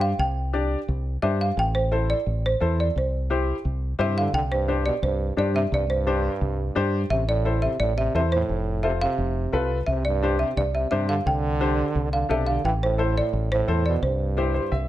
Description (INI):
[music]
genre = latin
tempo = 174 BPM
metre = 4/4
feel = straight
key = C major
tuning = A4 = 441 Hz
[part]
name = folk marimba with medium hard mallets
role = melody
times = 0.0-14.9 s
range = C5 to G5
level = -26 LUFS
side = right 1 dB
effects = plate reverb
[part]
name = clear upright piano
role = accompaniment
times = 0.0-14.9 s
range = D4 to E5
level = -27 LUFS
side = left 3 dB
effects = none
[part]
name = deep dub fingered electric bass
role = bass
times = 0.0-14.9 s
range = F1 to G2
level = -25 LUFS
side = equal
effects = none
[part]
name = clear trombone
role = second line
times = 4.0-14.9 s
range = G2 to E3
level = -29 LUFS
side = right 3 dB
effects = none
[sound]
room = light reverb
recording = none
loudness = -21 LUFS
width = side -14 dB against mid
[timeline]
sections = 0.0-4.3 A section; 4.3-14.9 A section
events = upright piano fill 14.4-14.9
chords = 0.0 Csus2; 1.6 Am; 3.0 C; 4.3 Csus2; 7.1 Am; 8.5 F; 9.9 Csus2; 12.6 Am; 14.0 C